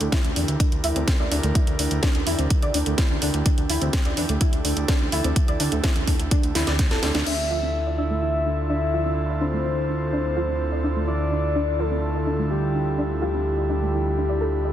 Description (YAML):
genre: progressive house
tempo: 126 BPM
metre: 4/4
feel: straight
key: D minor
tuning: A4 = 441 Hz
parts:
  - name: airy breathy pad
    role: sustained chords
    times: 0.0-14.7 s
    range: D3 to Bb4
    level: -29 LUFS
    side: right 1 dB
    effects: chorus, sidechain pumping
  - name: soft round pluck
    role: arpeggios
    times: 0.0-14.7 s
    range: A3 to D5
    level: -28 LUFS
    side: equal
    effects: ensemble chorus, sidechain pumping, digital delay
  - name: fat analog bass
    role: bass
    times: 0.0-14.7 s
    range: D1 to E2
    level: -26 LUFS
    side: equal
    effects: sidechain pumping
  - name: house drum kit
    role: drums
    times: 0.0-7.4 s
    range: crash cymbal, hi-hat, snare drum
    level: -27 LUFS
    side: right 1 dB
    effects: overdrive
  - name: electronic kick drum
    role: drums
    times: 0.1-6.9 s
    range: none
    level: -21 LUFS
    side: equal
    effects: none
  - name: soft octave-layered synth lead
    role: melody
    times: 7.3-14.7 s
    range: G4 to E5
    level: -26 LUFS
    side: left 1 dB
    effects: chorus, phaser, cassette tape, sidechain pumping, digital delay
room: light reverb, digital ambience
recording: dense, heavily limited modern master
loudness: -20 LUFS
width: side -11 dB against mid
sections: 0.0-7.3 A section; 7.3-14.7 B section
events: filter sweep on synth pluck 0.0-7.3, 7.3-14.7; drum fill 6.6-7.3; band accent 7.1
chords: 0.0 C7/D; 7.3 Dmadd9